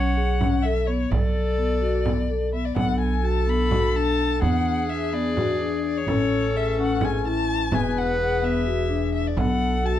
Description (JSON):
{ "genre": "contemporary instrumental, chamber music in an uneven meter", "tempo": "255 BPM (eighths)", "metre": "7/8", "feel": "straight", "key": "B dorian", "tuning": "A4 = 441 Hz", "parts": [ { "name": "dark violin", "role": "melody", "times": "0.0-10.0 s", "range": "C#5 to B5", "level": "-28 LUFS", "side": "left 5 dB", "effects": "none" }, { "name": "bright clarinet", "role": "second line", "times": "0.0-10.0 s", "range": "G#4 to C#5", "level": "-28 LUFS", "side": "left 2 dB", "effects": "none" }, { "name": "vibraphone with soft mallets", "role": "arpeggios", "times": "0.0-10.0 s", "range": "B3 to A4", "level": "-26 LUFS", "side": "left 4 dB", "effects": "none" }, { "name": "upright bass", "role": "bass", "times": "0.0-10.0 s", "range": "E1 to E2", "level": "-25 LUFS", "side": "right 2 dB", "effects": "none" }, { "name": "frame drum", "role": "percussion", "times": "0.2-9.6 s", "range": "none", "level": "-28 LUFS", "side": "right 2 dB", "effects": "none" }, { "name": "mellow woodwind section", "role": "sustained chords", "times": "2.8-10.0 s", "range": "E3 to G#4", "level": "-33 LUFS", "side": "right 1 dB", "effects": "none" } ], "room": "light reverb", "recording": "dark, warm production", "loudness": "-20 LUFS", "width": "side -11 dB against mid", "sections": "0.0-2.8 A section; 2.8-10.0 B section", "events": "none", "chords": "0.0 F#madd9/B; 1.1 Bm7; 4.4 E7; 6.1 Amaj7; 7.7 E7; 9.4 Bm7" }